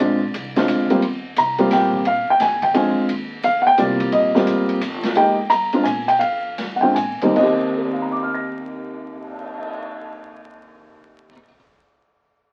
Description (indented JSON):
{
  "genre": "jazz piano trio",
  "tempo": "148-175 BPM",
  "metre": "3/4",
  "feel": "swing 65% on 8ths",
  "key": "Eb major",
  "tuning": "A4 = 440 Hz",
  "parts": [
    { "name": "dark baby grand piano", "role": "melody", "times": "0.0-11.5 s", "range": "Eb2 to Bb6", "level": "-19 LUFS", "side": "equal", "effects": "none" },
    { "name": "upright bass", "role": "bass", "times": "0.0-11.3 s", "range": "G1 to Bb2", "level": "-37 LUFS", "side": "equal", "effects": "none" },
    { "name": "swinging big-band drum kit", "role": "drums", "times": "0.0-9.7 s", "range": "crash cymbal, cymbal swell, hi-hat, kick drum, ride cymbal, snare drum", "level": "-33 LUFS", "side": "equal", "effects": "none" }
  ],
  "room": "wet studio ambience, RT60 0.5 s",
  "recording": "very old 78 rpm record, vinyl crackle",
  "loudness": "-19 LUFS",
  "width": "mono",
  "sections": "0.0-5.2 A section; 5.2-7.4 B section; 7.4-9.8 C section",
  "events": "slowing down 5.2-7.4",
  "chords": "0.0 Bb7; 1.0 Eb6; 2.1 Bb7; 3.1 Eb6; 5.2 Fm11; 5.9 Gm/Bb; 6.2 Fsus2; 7.0 Bbsus2; 7.4 Eb6"
}